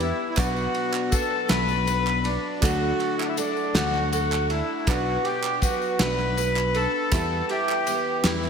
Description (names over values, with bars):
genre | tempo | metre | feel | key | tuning
indie folk with a building arrangement | 53 BPM (dotted quarters) | 6/8 | straight | unclear | A4 = 440 Hz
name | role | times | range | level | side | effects
accordion | melody | 0.0-8.5 s | D4 to B4 | -28 LUFS | right 2 dB | ping-pong delay
warm trumpet | second line | 0.0-8.5 s | D5 to B5 | -30 LUFS | left 8 dB | ping-pong delay
clear upright piano | accompaniment | 0.0-8.5 s | B1 to E5 | -36 LUFS | right 4 dB | none
picked steel-string acoustic guitar | accompaniment | 0.0-8.5 s | B2 to G4 | -32 LUFS | left 7 dB | lush chorus
nylon-string guitar | arpeggios | 0.0-8.5 s | A4 to B5 | -30 LUFS | right 5 dB | ping-pong delay
fingered electric bass | bass | 0.0-8.5 s | B1 to E2 | -28 LUFS | equal | none
cloth-damped thuddy drum kit | drums | 0.0-8.4 s | kick drum, ride cymbal, snare drum | -29 LUFS | equal | none
tambourine | percussion | 0.0-8.0 s | none | -38 LUFS | left 14 dB | none
group handclap | percussion | 0.4-8.5 s | none | -35 LUFS | right 7 dB | none
room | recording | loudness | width
wet lush hall reverb, RT60 1.8 s | dreamy mix soaked in reverb | -22 LUFS | side -6 dB against mid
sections
0.0-8.5 A section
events
none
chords
0.4 Bm; 2.6 D; 4.9 Bm; 7.1 Em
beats
| 0.37 1.50 | 2.62 3.75 | 4.87 5.99 | 7.12 8.24